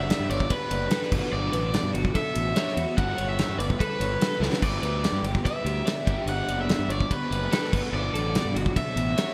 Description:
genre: math rock and midwest emo.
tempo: 145 BPM.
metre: 4/4.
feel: straight.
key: unclear.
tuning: A4 = 438 Hz.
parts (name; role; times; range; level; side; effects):
raw garage guitar; melody; 0.0-9.3 s; B4 to F#5; -33 LUFS; equal; overdrive.
twelve-string electric guitar; arpeggios; 0.0-9.3 s; F#4 to D5; -36 LUFS; equal; lush chorus, delay.
overdriven electric guitar; riff; 0.0-9.3 s; B2 to A4; -35 LUFS; equal; ensemble chorus.
fuzz fingered electric bass; bass; 0.0-9.1 s; F#1 to G2; -32 LUFS; equal; overdrive.
loose indie drum kit; drums; 0.1-9.3 s; crash cymbal, kick drum, ride cymbal, snare drum; -30 LUFS; equal; gated reverb.
room: moderate lush hall reverb, RT60 1.7 s, studio ambience.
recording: bright 1980s-style digital production.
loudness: -26 LUFS.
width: mono.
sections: 0.0-9.3 A section.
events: drum fill 4.4.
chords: 0.0 Gmaj9; 1.1 Bm7/G; 3.0 A9/G; 4.6 Em7/G; 6.1 Gmaj9; 7.7 Bm7/G.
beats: 0.09 0.50 0.91 | 1.32 1.74 2.15 2.56 | 2.97 3.38 3.80 4.21 | 4.62 5.04 5.45 5.86 | 6.28 6.69 7.11 7.52 | 7.94 8.35 8.77 9.18.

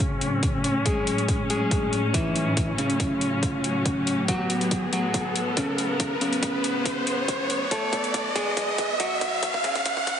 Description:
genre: heavy wobble dubstep.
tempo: 140 BPM.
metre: 4/4.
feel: half-time.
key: F# minor.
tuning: A4 = 440 Hz.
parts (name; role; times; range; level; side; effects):
electric guitar at the edge of break-up; melody; 0.0-10.2 s; C#3 to A4; -28 LUFS; equal; low-pass filter, dub echo.
rich chamber string section; sustained chords; 0.0-10.2 s; A2 to C#4; -28 LUFS; left 1 dB; vintage 12-bit sampler grit, sidechain pumping, low-pass filter.
electronic hi-hat; drums; 0.0-10.2 s; none; -30 LUFS; left 2 dB; none.
electronic kick drum; drums; 0.0-10.2 s; none; -28 LUFS; equal; none.
riser; sound effects; 0.2-10.2 s; none; -29 LUFS; right 1 dB; none.
room: moderate lush hall reverb, RT60 1.7 s, digital ambience.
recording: heavily compressed radio sound, high-pass filter, nothing above 10.4 kHz.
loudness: -22 LUFS.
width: side -8 dB against mid.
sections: 0.0-10.2 A section.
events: build-up 0.0-10.2; filter sweep on string section 0.0-10.2; filter sweep on clean electric guitar 0.0-10.2; filter sweep 0.0-10.2; riser 0.2-10.2; drum fill 4.3-10.2.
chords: 0.0 F#madd9.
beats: 0.00 0.43 | 0.86 1.28 1.71 2.14 | 2.57 3.00 3.43 3.86 | 4.29 4.71 5.14 5.57 | 6.00 6.43 6.86 7.29 | 7.71 8.14 8.57 9.00 | 9.43 9.86.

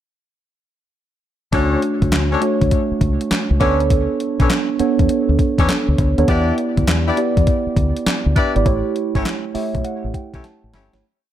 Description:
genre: R&B, new jack swing.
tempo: 101 BPM.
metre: 4/4.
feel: swing 66% on 16ths.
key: D major.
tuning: A4 = 436 Hz.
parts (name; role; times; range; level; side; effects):
mellow tine electric piano; accompaniment; 1.5-11.1 s; A3 to B5; -19 LUFS; right 3 dB; phaser.
dark horn section; stabs; 1.5-10.9 s; C#4 to D5; -24 LUFS; left 5 dB; ping-pong delay.
deep dub fingered electric bass; bass; 1.5-11.0 s; G1 to E2; -19 LUFS; left 1 dB; none.
gated 80s digital drum machine; drums; 1.5-11.0 s; handclaps, hi-hat, kick drum, snare drum; -19 LUFS; left 1 dB; gated reverb, gated reverb snare, overdrive.
room: little or no reverb.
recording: none.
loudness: -15 LUFS.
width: side -11 dB against mid.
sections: 1.5-11.0 verse.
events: fade-out 8.7-11.0; tine electric piano fill 9.3-11.0; drum fill 10.4-11.0.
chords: 1.5 Dmaj7; 3.6 Bm9; 6.3 Em7; 8.7 A7.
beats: | 1.53 2.12 2.72 3.31 | 3.90 4.50 5.09 5.69 | 6.28 6.88 7.47 8.06 | 8.66 9.25 9.85 10.44.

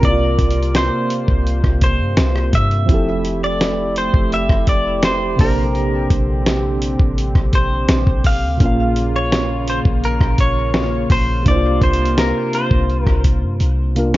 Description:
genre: contemporary R&B.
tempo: 84 BPM.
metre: 4/4.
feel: straight.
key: unclear.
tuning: A4 = 440 Hz.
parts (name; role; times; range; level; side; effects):
direct-recorded clean electric guitar; melody; 0.0-13.2 s; Bb4 to F5; -21 LUFS; equal; lush chorus, digital delay.
barky tine electric piano; accompaniment; 0.0-14.2 s; Bb2 to F5; -22 LUFS; right 2 dB; medium stereo tremolo.
warm analog pad; sustained chords; 0.0-14.2 s; C3 to G4; -25 LUFS; left 1 dB; chorus.
clean 808-style bass; bass; 0.0-14.2 s; F1 to G2; -19 LUFS; equal; none.
dusty soul sampler-style drum kit; drums; 0.0-14.2 s; hi-hat, kick drum, rim click, snare drum; -17 LUFS; equal; none.
room: little or no reverb.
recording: worn, warbling old tape, cassette tape, warbly pitch drift, nothing above 7.5 kHz.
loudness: -14 LUFS.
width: side -16 dB against mid.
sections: 0.0-14.2 A section.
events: drum fill 13.6-14.2.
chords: 0.0 C7sus4; 2.9 Fmaj9; 5.4 Bb69; 8.6 Bbm; 11.5 C7sus4.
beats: | 0.03 0.75 1.46 2.17 | 2.89 3.60 4.32 5.03 | 5.75 6.46 7.17 7.89 | 8.60 9.32 10.03 10.75 | 11.46 12.18 12.89 13.60.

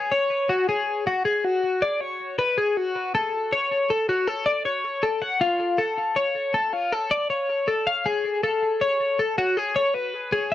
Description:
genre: rock.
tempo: 318 BPM (eighths).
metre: 7/8.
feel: straight.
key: unclear.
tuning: A4 = 442 Hz.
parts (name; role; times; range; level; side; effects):
twelve-string electric guitar; solo; 0.0-10.5 s; F4 to F#5; -21 LUFS; left 2 dB; digital delay.
room: moderate studio reverb, RT60 0.6 s.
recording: dark, warm production.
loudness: -21 LUFS.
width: side -12 dB against mid.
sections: 0.0-2.8 A section; 2.8-10.5 B section.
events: none.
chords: none.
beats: | 0.12 0.31 0.50 0.69 0.87 1.06 1.25 | 1.44 1.63 1.82 2.01 2.19 2.38 2.57 | 2.76 2.95 3.14 3.33 3.52 3.71 3.90 | 4.08 4.27 4.46 4.65 4.84 5.03 5.22 | 5.41 5.60 5.79 5.97 6.16 6.35 6.54 | 6.73 6.92 7.11 7.30 7.49 7.67 7.86 | 8.05 8.24 8.43 8.62 8.81 9.00 9.19 | 9.38 9.56 9.76 9.94 10.13 10.32 10.51.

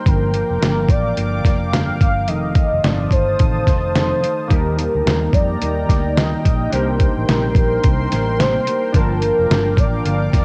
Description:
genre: indie pop, bedroom pop.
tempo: 108 BPM.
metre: 4/4.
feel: swing 60% on 16ths.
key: G minor.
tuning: A4 = 440 Hz.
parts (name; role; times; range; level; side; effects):
warm velvety synth lead; melody; 0.0-10.4 s; Bb4 to F5; -24 LUFS; equal; analog chorus, cassette tape, analog delay.
mellow electric guitar; accompaniment; 0.0-10.4 s; F2 to Eb4; -26 LUFS; equal; subtle chorus, vibrato effect, cassette tape.
lush unison pad; sustained chords; 0.0-10.4 s; Eb4 to Eb6; -29 LUFS; equal; chorus, cassette tape.
vintage muted fingered electric bass; bass; 0.1-10.4 s; F1 to F2; -25 LUFS; equal; none.
lo-fi sampler-style drum kit; drums; 0.1-10.4 s; hi-hat, kick drum, snare drum; -19 LUFS; equal; overdrive, vintage 12-bit sampler grit, cassette tape.
warbly lo-fi synth keys; accompaniment; 4.5-10.4 s; Bb3 to A5; -30 LUFS; equal; chorus, cassette tape.
room: light reverb, digital ambience.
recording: home recording on cassette.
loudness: -17 LUFS.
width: mono.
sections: 0.0-10.4 A section.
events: none.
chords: 0.1 Gm7; 2.3 F7; 4.5 Eb; 6.7 Cm7; 8.9 Gm7.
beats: | 0.06 0.62 1.17 1.73 | 2.28 2.84 3.39 3.95 | 4.50 5.06 5.62 6.17 | 6.73 7.28 7.84 8.39 | 8.95 9.50 10.06.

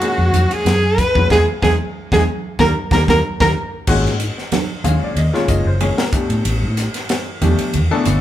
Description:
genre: electric jazz fusion.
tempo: 93 BPM.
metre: 4/4.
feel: swing 54% on 16ths.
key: unclear.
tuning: A4 = 440 Hz.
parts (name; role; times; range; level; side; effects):
rich violin; melody; 0.0-3.5 s; Gb4 to Cb5; -18 LUFS; equal; none.
bright reedy concert flute; second line; 0.0-3.5 s; Gb4 to Cb5; -25 LUFS; right 4 dB; none.
bright baby grand piano; accompaniment; 0.0-8.2 s; Bb2 to F5; -21 LUFS; left 3 dB; none.
vintage muted fingered electric bass; bass; 0.0-8.2 s; Gb1 to A2; -18 LUFS; equal; none.
crisp fusion drum kit; drums; 0.0-8.2 s; crash cymbal, hi-hat, kick drum, ride cymbal, snare drum; -22 LUFS; equal; none.
congas; percussion; 0.0-8.2 s; none; -25 LUFS; right 6 dB; none.
room: moderate large studio reverb, RT60 1.3 s.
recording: band playing live in one room.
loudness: -14 LUFS.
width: side -12 dB against mid.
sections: 0.0-3.9 A section; 3.9-8.2 B section.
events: band accent 1.3-3.9; drum fill 2.6-3.9.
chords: 0.0 Gbmaj9; 1.3 E; 2.6 Eb; 3.9 Ab9sus4; 6.1 A9sus4.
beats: 0.01 0.66 | 1.30 1.94 2.59 3.23 | 3.88 4.52 5.17 5.81 | 6.45 7.10 7.74.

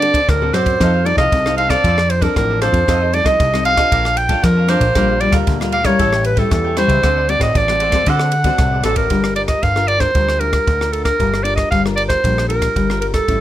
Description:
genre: samba and choro.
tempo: 116 BPM.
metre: 4/4.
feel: straight.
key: G minor.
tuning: A4 = 440 Hz.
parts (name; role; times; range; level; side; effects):
clear clarinet; melody; 0.0-13.4 s; A4 to G5; -16 LUFS; right 1 dB; none.
cavaquinho; accompaniment; 0.0-9.1 s; Eb4 to A5; -24 LUFS; right 4 dB; none.
nylon-string guitar; accompaniment; 0.0-13.4 s; A2 to Bb4; -22 LUFS; left 5 dB; none.
fat analog bass; bass; 0.0-13.4 s; G1 to D3; -19 LUFS; equal; none.
compact cocktail drum kit; drums; 0.0-13.4 s; kick drum, ride cymbal, rim click; -20 LUFS; equal; none.
room: light reverb.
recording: none.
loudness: -13 LUFS.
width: side -13 dB against mid.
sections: 0.0-9.1 A section; 9.1-13.4 B section.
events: none.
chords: 0.0 D7; 0.8 F7; 1.8 Dm7/F; 2.9 F7; 3.9 Bbmaj7; 5.0 Gm7/Bb; 6.0 A7; 7.0 D7; 9.1 Gm7.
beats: 0.28 | 0.80 1.32 1.84 2.36 | 2.88 3.40 3.92 4.44 | 4.96 5.47 5.99 6.51 | 7.03 7.55 8.07 8.59 | 9.11 9.63 10.15 10.68 | 11.20 11.72 12.24 12.76 | 13.28.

